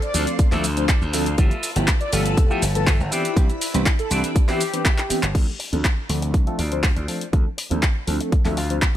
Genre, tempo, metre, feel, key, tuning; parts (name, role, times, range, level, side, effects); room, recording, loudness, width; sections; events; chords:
filtered disco house; 121 BPM; 4/4; straight; D dorian; A4 = 440 Hz
analog synth brass; melody; 0.0-5.2 s; G4 to D5; -29 LUFS; left 2 dB; chorus, sidechain pumping, low-pass filter, digital delay
phased string machine; sustained chords; 0.0-5.3 s; D4 to E6; -32 LUFS; equal; ensemble chorus, phaser, sidechain pumping, low-pass filter
electric guitar with an envelope filter; riff; 0.0-9.0 s; E4 to F5; -32 LUFS; equal; spring reverb, sidechain pumping, low-pass filter
punchy analog drum machine; drums; 0.0-8.9 s; crash cymbal, handclaps, hi-hat, shaker; -26 LUFS; equal; overdrive, sidechain pumping on hats, sidechain pumping on perc, sidechain pumping on cymbals
bright reed electric piano; accompaniment; 0.1-8.8 s; E3 to C5; -27 LUFS; equal; fast tremolo, phaser, vintage 12-bit sampler grit, sidechain pumping, low-pass filter
glassy slap bass; bass; 0.1-8.8 s; F1 to D2; -24 LUFS; equal; sidechain pumping, low-pass filter
electronic kick drum; drums; 0.4-8.9 s; -19 LUFS; equal
little or no reverb; -18 LUFS; side -12 dB against mid
0.0-5.3 A section; 5.3-9.0 B section
drop 0.0-5.3; drum fill 5.0-5.3; filter sweep 5.3-9.0
0.0 Dm7; 1.4 G13; 3.1 Cmaj9; 5.3 Dm7